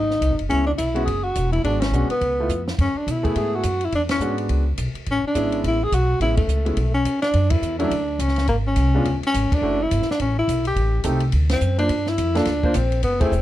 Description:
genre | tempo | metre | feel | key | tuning
jazz, small-group swing and bop | 211 BPM | 4/4 | swing 60% on 8ths | A major | A4 = 440 Hz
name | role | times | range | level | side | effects
breathy tenor saxophone | melody | 0.0-13.4 s | A3 to G#4 | -22 LUFS | left 1 dB | none
upright bass | bass | 0.0-13.4 s | E1 to B2 | -22 LUFS | equal | none
compact cocktail drum kit | drums | 0.1-13.4 s | hi-hat, kick drum, ride cymbal, snare drum | -28 LUFS | equal | none
warm concert grand piano | accompaniment | 0.5-13.3 s | F#3 to C5 | -26 LUFS | equal | none
room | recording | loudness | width
light reverb | dark, warm production | -18 LUFS | side -14 dB against mid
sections
0.0-7.3 A section; 7.3-13.4 B section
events
band accent 1.8, 4.1, 6.3, 7.5, 9.5, 11.5, 13.2; drum fill 2.5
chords
0.5 C#m7; 1.6 G#m7b5; 2.2 C#7alt; 2.8 F#m11; 3.9 E9; 5.1 Amaj9; 7.3 Dmaj7; 8.5 G#m; 9.0 C#5; 9.6 F#m7; 10.8 Am7b5; 11.3 D7; 11.9 Gm7

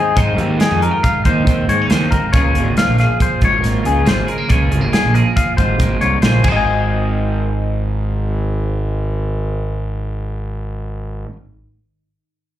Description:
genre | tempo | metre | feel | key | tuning
math rock and midwest emo | 138 BPM | 5/4 | straight | Ab major | A4 = 440 Hz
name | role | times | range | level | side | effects
twelve-string electric guitar | accompaniment | 0.0-11.4 s | Eb2 to Ab4 | -22 LUFS | right 6 dB | wide subtle chorus, slapback echo
twangy electric guitar | arpeggios | 0.0-11.4 s | Ab4 to Ab5 | -19 LUFS | left 5 dB | wide subtle chorus, slapback echo
fuzz fingered electric bass | bass | 0.2-11.2 s | Ab1 to Ab2 | -18 LUFS | equal | overdrive
modern studio drum kit | drums | 0.2-6.5 s | crash cymbal, hi-hat, kick drum, snare drum | -18 LUFS | equal | none
room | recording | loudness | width
light reverb, small room ambience | live gig heard through the venue's PA, club reverb | -14 LUFS | side -12 dB against mid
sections
0.0-6.7 A section; 6.7-11.0 B section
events
none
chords
0.0 Ab69; 2.3 Db6; 6.4 Ab6

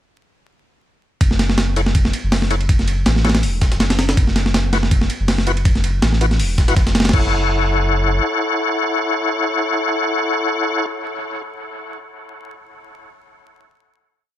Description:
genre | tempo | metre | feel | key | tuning
drum and bass, jungle | 162 BPM | 4/4 | swing 55% on 16ths | F# minor | A4 = 437 Hz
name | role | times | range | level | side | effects
soft dub sub bass | bass | 1.2-8.2 s | E1 to A1 | -18 LUFS | equal | tube saturation
breakbeat sampler-style drum kit | drums | 1.2-7.2 s | crash cymbal, hi-hat, kick drum, ride cymbal, snare drum | -17 LUFS | equal | none
breakbeat sampler-style drum kit | drums | 1.2-7.1 s | hi-hat, snare drum | -31 LUFS | left 1 dB | high-pass filter on hats, high-pass filter on snare, high-pass filter on room
tonewheel organ | stabs | 1.8-10.9 s | E4 to F#5 | -20 LUFS | left 2 dB | chorus vibrato, fast rotary speaker, dub echo
room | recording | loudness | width
digital ambience | vinyl crackle | -15 LUFS | side -12 dB against mid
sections
1.2-7.1 drop; 7.1-10.1 final chord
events
drop 1.2-7.1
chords
1.2 F#m7; 4.2 Bsus4/F#; 7.1 F#m7

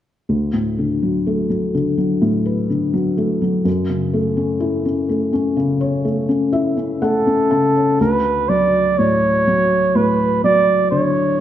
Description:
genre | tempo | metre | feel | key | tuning
pop | 62 BPM | 4/4 | straight | D major | A4 = 440 Hz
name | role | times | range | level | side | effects
felt-muted upright piano | accompaniment | 0.3-11.4 s | D2 to A5 | -17 LUFS | left 1 dB | none
warm flugelhorn | melody | 7.0-11.4 s | A4 to D5 | -16 LUFS | right 3 dB | none
room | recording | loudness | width
wet recital hall reverb, RT60 1.6 s | none | -15 LUFS | side -11 dB against mid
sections
0.3-8.0 A section; 8.0-11.4 B section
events
felt piano fill 6.1-8.0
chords
0.3 D6; 3.7 F#m7; 8.0 D

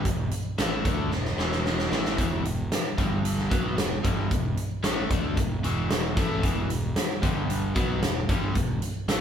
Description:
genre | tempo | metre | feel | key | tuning
classic rock | 113 BPM | 4/4 | straight | unclear | A4 = 439 Hz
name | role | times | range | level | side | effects
overdriven electric guitar | riff | 0.0-9.2 s | E2 to D4 | -29 LUFS | equal | none
fuzz fingered electric bass | bass | 0.0-9.2 s | E1 to D2 | -33 LUFS | equal | overdrive
big rock drum kit | drums | 0.0-9.2 s | hi-hat, kick drum, snare drum | -26 LUFS | equal | none
room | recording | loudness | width
light reverb | band playing live in one room | -24 LUFS | side -8 dB against mid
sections
0.0-9.2 A section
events
drum fill 1.1-2.2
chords
0.0 E5; 3.0 G5; 3.5 E5; 7.2 G5; 7.8 E5

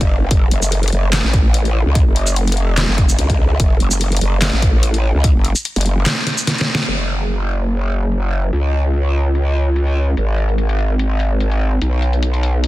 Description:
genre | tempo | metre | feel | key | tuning
heavy wobble dubstep | 146 BPM | 4/4 | swing 54% on 16ths, half-time | F# minor | A4 = 440 Hz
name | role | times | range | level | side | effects
growl bass | bass | 0.0-12.7 s | F#1 to C#2 | -16 LUFS | equal | chorus, overdrive
dubstep drum kit | drums | 0.0-12.7 s | handclaps, hi-hat, shaker, snare drum | -20 LUFS | equal | low-pass filter on hats, low-pass filter on snare, low-pass filter on perc, low-pass filter on room
electronic kick drum | drums | 0.0-5.3 s | none | -14 LUFS | equal | none
room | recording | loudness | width
little or no reverb | dense, heavily limited modern master | -14 LUFS | side -17 dB against mid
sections
0.0-6.9 A section; 6.9-12.7 B section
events
drop 0.0-6.9; drum fill 6.5-6.9; band accent 6.7; filter sweep on drum 6.9-12.7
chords
none

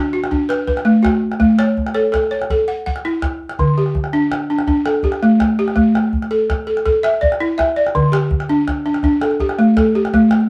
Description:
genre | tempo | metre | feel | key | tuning
west african traditional, West African string and xylophone music | 110 BPM (dotted quarters) | 12/8 | straight | D major | A4 = 440 Hz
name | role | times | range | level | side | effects
balafon | arpeggios | 0.0-10.5 s | D3 to F#5 | -17 LUFS | equal | none
calabash | percussion | 0.2-10.4 s | none | -25 LUFS | equal | none
room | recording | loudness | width
moderate studio reverb, RT60 0.6 s | band playing live in one room | -16 LUFS | mono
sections
0.0-3.6 A section; 3.6-10.5 B section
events
none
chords
0.0 D; 1.4 A; 3.6 D5; 5.8 A5; 7.9 D5

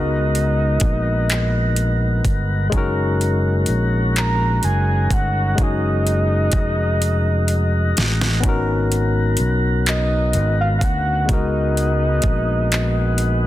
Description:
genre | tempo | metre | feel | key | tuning
slow six-eight R&B | 42 BPM (dotted quarters) | 6/8 | straight | F# major | A4 = 440 Hz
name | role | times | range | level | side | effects
soft octave-layered synth lead | melody | 0.0-13.5 s | D#5 to A#5 | -24 LUFS | right 1 dB | chorus, digital delay
barky tine electric piano | accompaniment | 0.0-13.5 s | G#3 to A#4 | -24 LUFS | left 4 dB | overdrive
tonewheel organ | sustained chords | 0.0-13.5 s | C#3 to A#4 | -28 LUFS | right 1 dB | slow rotary speaker
fingered electric bass | bass | 0.0-13.5 s | E#1 to D2 | -19 LUFS | equal | none
smooth R&B drum kit | drums | 0.3-13.4 s | handclaps, hi-hat, kick drum, snare drum | -21 LUFS | equal | none
room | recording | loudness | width
digital ambience | dense, heavily limited modern master | -16 LUFS | side -14 dB against mid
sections
0.0-13.5 A section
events
drum fill 7.0-8.4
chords
0.0 C#13sus4; 2.7 F#6; 8.4 G#m11; 11.3 C#13sus4

